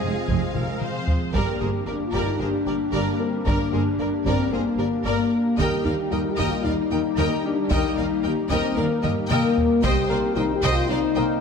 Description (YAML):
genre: cinematic, hybrid orchestral and electronic film score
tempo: 113 BPM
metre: 4/4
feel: straight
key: G phrygian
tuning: A4 = 440 Hz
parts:
  - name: clear symphonic violin section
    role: melody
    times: 0.0-11.2 s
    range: C5 to G5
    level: -34 LUFS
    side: left 4 dB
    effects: none
  - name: rich studio violin section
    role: second line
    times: 0.0-11.2 s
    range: Ab4 to Eb5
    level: -33 LUFS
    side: left 1 dB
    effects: none
  - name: bright symphonic viola section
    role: accompaniment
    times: 0.0-11.2 s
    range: Ab4 to C5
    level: -31 LUFS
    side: equal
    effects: none
  - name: clear trombone section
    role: sustained chords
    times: 0.0-1.0 s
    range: C3 to Ab3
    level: -41 LUFS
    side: right 4 dB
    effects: none
  - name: dark French horn section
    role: sustained chords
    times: 0.0-11.4 s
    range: Bb3 to C5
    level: -24 LUFS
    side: left 4 dB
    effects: none
  - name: hollow soft pad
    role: sustained chords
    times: 0.0-11.4 s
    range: F3 to C5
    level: -30 LUFS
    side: left 1 dB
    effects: ensemble chorus
  - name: resonant blip pluck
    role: arpeggios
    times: 0.0-11.3 s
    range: C3 to G4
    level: -34 LUFS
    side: right 2 dB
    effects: none
  - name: clear symphonic double bass section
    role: bass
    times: 0.0-11.2 s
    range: G1 to F2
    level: -29 LUFS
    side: right 3 dB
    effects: none
  - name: dark tuba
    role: bass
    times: 0.0-0.7 s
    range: F1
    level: -31 LUFS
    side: right 4 dB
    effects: none
  - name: rich symphonic cello section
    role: bass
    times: 0.0-11.2 s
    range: C2 to Ab3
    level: -36 LUFS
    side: right 3 dB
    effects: none
  - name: clear grand piano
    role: texture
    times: 0.0-11.4 s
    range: Bb3 to D5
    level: -35 LUFS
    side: left 1 dB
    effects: ping-pong delay
  - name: taiko ensemble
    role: drums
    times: 0.3-11.1 s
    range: none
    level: -28 LUFS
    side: equal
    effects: none
room: wet scoring stage reverb, RT60 1.8 s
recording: none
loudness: -20 LUFS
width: side -6 dB against mid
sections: 0.0-1.3 A section; 1.3-11.4 B section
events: drum fill 0.5-1.3, 9.0-9.8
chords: 0.0 Fm; 1.3 Gm; 5.6 Eb; 9.8 Cm